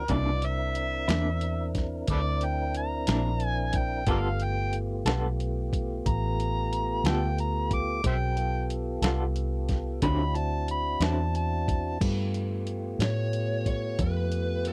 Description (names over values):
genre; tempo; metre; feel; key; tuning
slow blues; 60 BPM (dotted quarters); 12/8; straight; G mixolydian; A4 = 440 Hz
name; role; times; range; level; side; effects
overdriven harmonica; second line; 0.0-12.0 s; A4 to D6; -34 LUFS; equal; none
tonewheel organ; sustained chords; 0.0-14.7 s; C#3 to B4; -37 LUFS; equal; slow rotary speaker
vintage muted fingered electric bass; bass; 0.0-14.7 s; G1 to A2; -31 LUFS; equal; none
electric guitar through a small old amp; accompaniment; 0.1-11.2 s; C3 to A4; -32 LUFS; equal; tremolo
dusty soul sampler-style drum kit; drums; 0.1-14.7 s; crash cymbal, hi-hat, kick drum, snare drum; -32 LUFS; equal; overdrive
smooth overdriven lead guitar; melody; 13.0-14.7 s; B4 to C#5; -35 LUFS; equal; none
room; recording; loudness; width
little or no reverb; dry, close 1970s-style studio recording; -28 LUFS; mono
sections
0.0-12.0 A section; 12.0-14.7 B section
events
harmonica solo 0.0-12.0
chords
0.1 C9; 4.1 G9; 10.0 D9; 12.0 G9